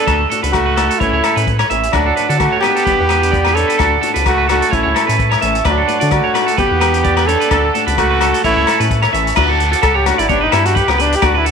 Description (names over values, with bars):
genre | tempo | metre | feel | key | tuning
highlife guitar band | 129 BPM | 4/4 | swing 55% on 16ths | D major | A4 = 440 Hz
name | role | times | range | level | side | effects
warm trumpet | melody | 0.0-11.5 s | B3 to A4 | -18 LUFS | equal | none
raspy tenor saxophone | second line | 0.0-8.9 s | F#3 to D4 | -23 LUFS | right 10 dB | none
electric guitar at the edge of break-up | arpeggios | 0.0-11.5 s | F#4 to E5 | -17 LUFS | right 10 dB | slapback echo
flamenco guitar | accompaniment | 0.1-11.5 s | E3 to G4 | -24 LUFS | left 11 dB | none
rubbery square bass | bass | 0.1-11.5 s | G1 to D3 | -19 LUFS | equal | none
vintage drum kit | drums | 0.1-11.5 s | crash cymbal, hi-hat, kick drum, rim click | -22 LUFS | left 3 dB | none
agogo bells | percussion | 0.1-11.3 s | none | -21 LUFS | left 14 dB | none
overdriven combo organ | sustained chords | 1.9-11.5 s | E5 to D6 | -25 LUFS | left 8 dB | none
room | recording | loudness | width
moderate echo chamber reverb, RT60 1.7 s, small room ambience | 1960s-style stereo with parts hard left and right | -12 LUFS | side -6 dB against mid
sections
0.0-9.4 A section; 9.4-11.5 B section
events
trumpet solo 9.4-11.5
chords
0.1 D; 1.0 A; 1.9 D; 2.9 G; 3.8 D; 4.7 A; 5.7 D; 6.6 G; 7.5 D; 8.4 A; 9.4 D; 10.3 G